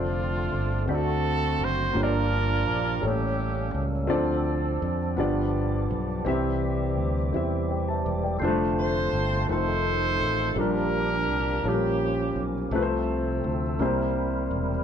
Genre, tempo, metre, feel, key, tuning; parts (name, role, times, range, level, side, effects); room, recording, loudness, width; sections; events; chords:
gospel; 56 BPM (dotted quarters); 6/8; straight; F major; A4 = 440 Hz
clear horn section; melody; 0.0-4.1, 8.8-12.7 s; A3 to C5; -27 LUFS; right 2 dB
warm upright piano; accompaniment; 0.0-14.8 s; G2 to A5; -28 LUFS; left 1 dB
percussive tonewheel organ; sustained chords; 0.0-14.8 s; D3 to Bb4; -33 LUFS; equal; slow rotary speaker, chorus vibrato
fingered electric bass; bass; 0.0-14.8 s; E1 to F2; -29 LUFS; equal
light reverb; band playing live in one room; -23 LUFS; side -8 dB against mid
0.0-14.8 A section
0.0 F6; 0.9 D7; 2.0 Gm7; 3.0 A7b9; 4.1 Dm7; 5.2 G7; 6.3 C; 8.4 F6; 9.5 F7; 10.6 Bb6; 11.7 Bbm6; 12.7 F/C; 13.8 C7